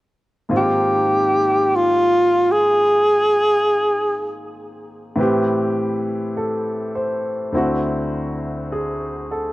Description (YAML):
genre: jazz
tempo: 51 BPM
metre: 4/4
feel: swing 66% on 8ths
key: unclear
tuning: A4 = 440 Hz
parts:
  - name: clear concert grand piano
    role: accompaniment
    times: 0.5-9.5 s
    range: D2 to C5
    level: -22 LUFS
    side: equal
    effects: none
  - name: warm alto saxophone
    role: melody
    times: 0.6-4.3 s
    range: F4 to Ab4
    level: -15 LUFS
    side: equal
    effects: none
room: moderate plate reverb, RT60 3.6 s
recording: worn, warbling old tape, cassette tape, warbly pitch drift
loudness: -16 LUFS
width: side -18 dB against mid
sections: 0.5-9.5 A section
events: alto saxophone solo 0.5-9.5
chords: 0.5 Ab69; 5.2 Am7; 7.5 D9